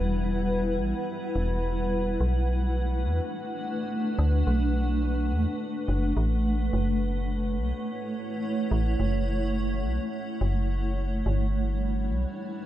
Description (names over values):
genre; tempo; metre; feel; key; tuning
IDM; 106 BPM; 4/4; swing 62% on 16ths; unclear; A4 = 440 Hz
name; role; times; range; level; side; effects
granular cloud pad; sustained chords; 0.0-12.7 s; G3 to F#5; -29 LUFS; right 1 dB; built-in reverb
metallic FM bass; bass; 0.0-12.3 s; E1 to E2; -26 LUFS; equal; tube saturation
room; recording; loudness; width
light reverb; nothing above 10.3 kHz; -25 LUFS; side -13 dB against mid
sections
0.0-12.7 A section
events
none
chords
0.0 Emadd9; 2.2 Bm7; 6.7 F#m7; 11.3 Gmaj7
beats
0.51 1.07 1.64 | 2.21 2.77 3.34 3.90 | 4.47 5.04 5.60 6.17 | 6.73 7.30 7.87 8.43 | 9.00 9.56 10.13 10.70 | 11.26 11.83 12.39